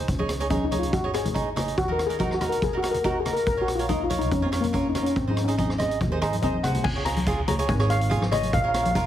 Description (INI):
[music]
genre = calypso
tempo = 142 BPM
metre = 4/4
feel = straight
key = Db major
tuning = A4 = 440 Hz
[part]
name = cavaquinho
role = accompaniment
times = 0.0-9.1 s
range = Eb4 to Eb5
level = -30 LUFS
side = right 4 dB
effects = none
[part]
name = upright bass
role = bass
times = 0.0-9.1 s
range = Ab1 to F2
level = -29 LUFS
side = equal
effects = none
[part]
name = street-band drum kit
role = drums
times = 0.1-9.1 s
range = crash cymbal, hi-hat, kick drum, rim click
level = -29 LUFS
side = equal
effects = none
[part]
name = congas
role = percussion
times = 0.2-8.9 s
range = none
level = -32 LUFS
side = left 2 dB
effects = none
[part]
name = steel pan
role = melody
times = 0.5-9.1 s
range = Bb3 to Bb5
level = -26 LUFS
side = left 2 dB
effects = none
[sound]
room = moderate recital hall reverb, RT60 1.4 s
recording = heavily compressed radio sound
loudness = -22 LUFS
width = side -11 dB against mid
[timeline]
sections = 0.0-6.8 A section; 6.8-9.1 B section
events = drum fill 6.3-6.8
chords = 0.1 Dbsus2; 1.8 Ebm; 3.5 Bbm; 5.2 Ab; 6.8 Db; 8.5 Bbm